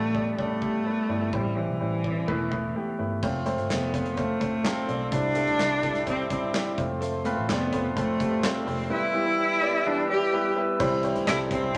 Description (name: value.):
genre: piano-driven pop.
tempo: 127 BPM.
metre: 4/4.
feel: straight.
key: unclear.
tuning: A4 = 444 Hz.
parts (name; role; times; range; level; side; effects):
clear cello; melody; 0.0-11.8 s; E3 to G4; -30 LUFS; equal; none.
clear upright piano; accompaniment; 0.0-11.8 s; A2 to D5; -31 LUFS; equal; none.
vintage muted picked electric bass; bass; 0.0-11.8 s; E1 to D2; -37 LUFS; equal; none.
huge arena drum kit; drums; 0.1-11.8 s; crash cymbal, handclaps, hi-hat, kick drum, snare drum; -36 LUFS; equal; none.
glass harmonica; sustained chords; 3.2-10.8 s; A4 to E6; -36 LUFS; equal; none.
direct-recorded clean electric guitar; riff; 7.0-11.8 s; C3 to C5; -36 LUFS; equal; spring reverb.
room: wet large studio reverb, RT60 0.9 s.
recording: none.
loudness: -26 LUFS.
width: mono.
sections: 0.0-3.2 A section; 3.2-10.8 B section.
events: none.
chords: 0.0 G/A; 1.3 C/A; 2.3 Esus4; 3.2 F; 5.1 Cadd9; 6.8 F; 8.9 Em; 10.8 C.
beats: 0.39 0.86 | 1.33 1.81 2.28 2.76 | 3.23 3.70 4.18 4.65 | 5.13 5.60 6.07 6.55 | 7.02 7.49 7.97 8.44 | 8.91 9.39 9.86 10.33 | 10.81 11.28 11.75.